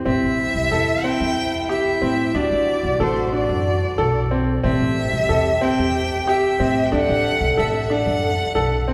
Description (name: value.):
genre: contemporary instrumental, chamber music in an uneven meter.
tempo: 184 BPM (eighths).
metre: 7/8.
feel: straight.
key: A dorian.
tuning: A4 = 439 Hz.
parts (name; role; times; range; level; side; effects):
rich violin; melody; 0.1-8.9 s; C5 to G5; -25 LUFS; equal; none.
mellow French horn; second line; 0.1-8.8 s; E4 to A4; -28 LUFS; equal; none.
clear concert grand piano; arpeggios; 0.1-8.9 s; C4 to A4; -24 LUFS; equal; none.
upright bass; bass; 0.1-8.9 s; A1 to A2; -27 LUFS; equal; none.
room: wet cathedral reverb, RT60 4.9 s.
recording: recorded in a church or concert hall.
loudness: -20 LUFS.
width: mono.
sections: 0.1-8.9 A section.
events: none.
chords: 0.1 Am7; 2.3 D; 4.6 Am7; 6.9 D.